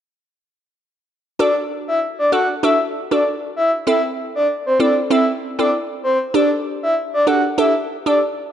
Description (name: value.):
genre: dancehall.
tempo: 97 BPM.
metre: 4/4.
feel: swing 56% on 16ths.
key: unclear.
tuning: A4 = 440 Hz.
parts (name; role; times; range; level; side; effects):
breathy flute-like synth lead; melody; 1.4-8.2 s; C5 to F#5; -18 LUFS; left 1 dB; chorus, tape echo.
glassy wavetable pluck; accompaniment; 1.4-8.2 s; C4 to A4; -20 LUFS; right 2 dB; chorus.
room: moderate lush hall reverb, RT60 2.2 s.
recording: dark, warm production.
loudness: -16 LUFS.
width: side -9 dB against mid.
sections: 1.4-8.5 A section.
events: none.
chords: 1.4 D; 3.9 Am; 6.3 Gsus2.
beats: | 1.40 2.02 2.63 3.25 | 3.87 4.49 5.11 5.73 | 6.34 6.96 7.58 8.20.